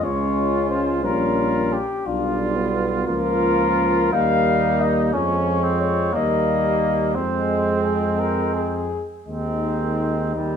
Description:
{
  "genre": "classical, brass quintet",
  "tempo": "58 BPM (dotted quarters)",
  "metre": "6/8",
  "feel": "uneven beats, rubato",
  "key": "Ab major from 3.1 s",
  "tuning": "A4 = 440 Hz",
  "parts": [
    { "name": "dark cornet", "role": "melody", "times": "0.0-10.6 s", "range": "Eb4 to F5", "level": "-24 LUFS", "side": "left 8 dB", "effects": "none" },
    { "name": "mellow trumpet", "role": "second line", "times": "0.0-10.6 s", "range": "G3 to F4", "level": "-26 LUFS", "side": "right 5 dB", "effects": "none" },
    { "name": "clear French horn", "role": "accompaniment", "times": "0.0-10.6 s", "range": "G3 to D4", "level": "-27 LUFS", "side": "left 2 dB", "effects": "none" },
    { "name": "warm trombone", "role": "accompaniment", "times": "0.0-10.6 s", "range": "Eb3 to Ab3", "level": "-26 LUFS", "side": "right 5 dB", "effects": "none" },
    { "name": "warm bass trombone", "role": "bass", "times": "0.0-10.6 s", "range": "Bb1 to F2", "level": "-25 LUFS", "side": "right 1 dB", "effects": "none" }
  ],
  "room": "moderate recital hall reverb, RT60 1.4 s",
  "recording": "minimal, uncompressed stereo recording",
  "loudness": "-18 LUFS",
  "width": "side -7 dB against mid",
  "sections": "0.0-10.6 A section",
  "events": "none",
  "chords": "0.0 Db; 1.0 Gm7b5/Bb; 2.1 G7/B; 3.1 Bbm/Db; 4.1 Eb; 5.1 Db/F; 6.1 Eb; 7.2 Fm; 9.3 Ab/Eb",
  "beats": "0.03 | 1.04 2.06 | 3.06 4.12 | 5.13 6.14 | 7.16 8.19 | 9.28 10.36"
}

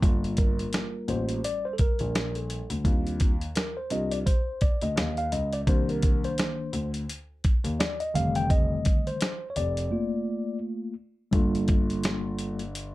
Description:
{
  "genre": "hip hop, jazz-hop",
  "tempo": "85 BPM",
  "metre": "4/4",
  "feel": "swing 59% on 16ths",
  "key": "G minor",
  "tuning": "A4 = 440 Hz",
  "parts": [
    { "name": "mellow tine electric piano", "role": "accompaniment", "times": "0.0-12.6 s", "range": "D3 to G5", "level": "-29 LUFS", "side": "left 1 dB", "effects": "slow stereo tremolo, plate reverb" },
    { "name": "dark concert grand piano", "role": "bass", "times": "0.0-12.9 s", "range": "F1 to Eb2", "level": "-31 LUFS", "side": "left 1 dB", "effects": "none" },
    { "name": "dusty soul sampler-style drum kit", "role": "drums", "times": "0.0-12.9 s", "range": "hi-hat, kick drum, snare drum", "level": "-25 LUFS", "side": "equal", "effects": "none" }
  ],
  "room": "light reverb",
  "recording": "none",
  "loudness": "-24 LUFS",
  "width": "side -18 dB against mid",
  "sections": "0.0-11.3 A section; 11.3-12.9 B section",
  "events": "tine electric piano solo 0.0-11.3; break 9.9-11.3",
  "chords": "0.0 Gm9; 2.9 Ebmaj13; 5.7 Cm9; 8.1 F13; 9.9 Bbmaj7/A; 11.3 Gm9",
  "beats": "| 0.03 0.73 1.44 2.14 | 2.85 3.56 4.26 4.97 | 5.67 6.38 7.08 7.79 | 8.50 9.20 9.91 10.62 | 11.32 12.03 12.73"
}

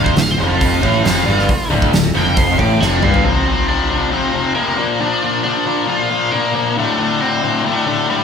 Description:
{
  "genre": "classic rock",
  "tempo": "136 BPM",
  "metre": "4/4",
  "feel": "straight",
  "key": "D minor",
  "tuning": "A4 = 444 Hz",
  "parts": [
    { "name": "octave-fuzz lead guitar", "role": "melody", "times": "0.0-8.2 s", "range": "G3 to D6", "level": "-19 LUFS", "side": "right 2 dB", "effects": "wah, distortion" },
    { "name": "tight distorted guitar", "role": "riff", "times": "0.0-8.2 s", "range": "D2 to Bb3", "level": "-17 LUFS", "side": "left 5 dB", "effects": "distortion" },
    { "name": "tight distorted guitar", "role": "riff", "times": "0.0-3.2 s", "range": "D2 to A2", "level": "-20 LUFS", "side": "right 6 dB", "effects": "distortion" },
    { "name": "fuzz picked electric bass", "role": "bass", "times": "0.0-3.2 s", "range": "D1 to A1", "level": "-19 LUFS", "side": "right 1 dB", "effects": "overdrive" },
    { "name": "huge arena drum kit", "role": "drums", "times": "0.1-3.2 s", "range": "hi-hat, kick drum, snare drum, toms", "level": "-18 LUFS", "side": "right 1 dB", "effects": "none" }
  ],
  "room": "moderate large studio reverb, RT60 0.9 s",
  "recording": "band playing live in one room",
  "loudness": "-13 LUFS",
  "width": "side -6 dB against mid",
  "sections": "0.0-3.2 A section; 3.2-8.2 B section",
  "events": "lead electric guitar solo 0.0-3.2; drum fill 2.8-3.2",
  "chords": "0.0 Dm; 3.2 F5; 4.8 Bb; 6.8 D5",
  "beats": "0.17 0.61 1.05 | 1.49 1.93 2.37 2.81 | 3.25 3.69 4.12 4.56 | 5.00 5.44 5.88 6.32 | 6.76 7.20 7.64 8.08"
}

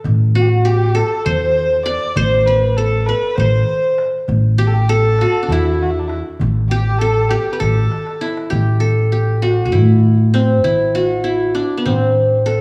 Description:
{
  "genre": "Turkish makam ensemble",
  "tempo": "198 BPM (eighths)",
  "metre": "7/8",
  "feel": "straight",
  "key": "A makam huseyni",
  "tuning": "A4 = 440 Hz",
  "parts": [
    { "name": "qanun", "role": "melody", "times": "0.0-12.6 s", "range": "B3-30c to D5", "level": "-20 LUFS", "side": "equal", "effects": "none" },
    { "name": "darbuka", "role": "percussion", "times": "0.0-12.6 s", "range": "none", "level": "-26 LUFS", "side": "equal", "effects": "none" },
    { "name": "upright bass", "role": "bass", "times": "0.1-12.6 s", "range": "A1 to A2", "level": "-18 LUFS", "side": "equal", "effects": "none" },
    { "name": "rich kamancheh", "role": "second line", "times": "0.4-8.3 s", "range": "D4 to D5", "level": "-24 LUFS", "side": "equal", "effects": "none" }
  ],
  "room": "light reverb",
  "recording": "small room ambience",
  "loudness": "-16 LUFS",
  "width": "mono",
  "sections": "0.0-8.5 A section; 8.5-12.6 B section",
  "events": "drum fill 7.9-8.5",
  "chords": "none",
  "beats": "| 0.05 0.35 0.65 0.95 1.26 1.56 1.86 | 2.16 2.46 2.77 3.07 3.37 3.67 3.98 | 4.28 4.58 4.88 5.18 5.49 5.79 6.09 | 6.40 6.70 7.00 7.30 7.61 7.91 8.21 | 8.52 8.82 9.12 9.43 9.73 10.03 10.34 | 10.64 10.94 11.25 11.55 11.85 12.16 12.46"
}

